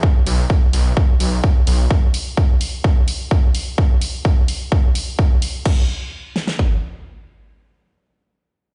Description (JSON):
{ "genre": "EDM, festival progressive house", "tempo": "128 BPM", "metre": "4/4", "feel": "straight", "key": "unclear", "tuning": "A4 = 439 Hz", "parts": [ { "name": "big-room dance drum kit", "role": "drums", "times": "0.0-6.7 s", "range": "kick drum, snare drum", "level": "-17 LUFS", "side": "equal", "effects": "none" }, { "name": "detuned saw bass", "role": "bass", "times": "0.3-1.9 s", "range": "B1", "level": "-18 LUFS", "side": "equal", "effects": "chorus, sidechain pumping" }, { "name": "big-room dance drum kit", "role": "drums", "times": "0.3-5.7 s", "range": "crash cymbal, hi-hat", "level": "-31 LUFS", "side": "equal", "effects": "none" } ], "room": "little or no reverb", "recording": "played on a big sound system in a bare room, large studio reverb, nothing above 10.6 kHz", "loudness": "-18 LUFS", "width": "mono", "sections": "0.0-5.7 A section; 5.7-8.7 B section", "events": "none", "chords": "none" }